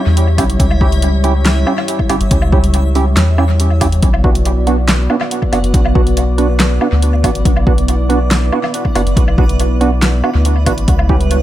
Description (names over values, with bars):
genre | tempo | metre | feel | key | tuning
deep dubstep | 140 BPM | 4/4 | half-time | B minor | A4 = 436 Hz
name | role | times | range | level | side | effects
dark analog pad | sustained chords | 0.0-11.4 s | G3 to D5 | -21 LUFS | left 1 dB | chorus
backwards swelling texture | texture | 0.0-11.4 s | B3 to E5 | -26 LUFS | right 2 dB | built-in reverb
soft dub sub bass | bass | 0.1-11.4 s | F#1 to E2 | -13 LUFS | equal | none
deep house drum kit | drums | 0.2-11.4 s | handclaps, hi-hat, snare drum, woodblock | -19 LUFS | left 1 dB | overdrive, studio reverb, tape echo
percussive organ stab | stabs | 0.4-11.2 s | B3 to G4 | -19 LUFS | right 4 dB | analog chorus, cassette tape, dub echo
electronic kick drum | drums | 0.4-11.2 s | none | -15 LUFS | equal | overdrive, studio reverb
room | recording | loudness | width
digital ambience | echo-heavy mix | -11 LUFS | side -13 dB against mid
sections
0.0-11.4 A section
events
none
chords
0.0 C#dim; 4.0 Bm; 10.9 C#dim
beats
0.17 | 0.59 1.02 1.45 1.88 | 2.31 2.74 3.17 3.60 | 4.02 4.45 4.88 5.31 | 5.74 6.17 6.59 7.02 | 7.45 7.88 8.31 8.74 | 9.17 9.60 10.02 10.45 | 10.88 11.31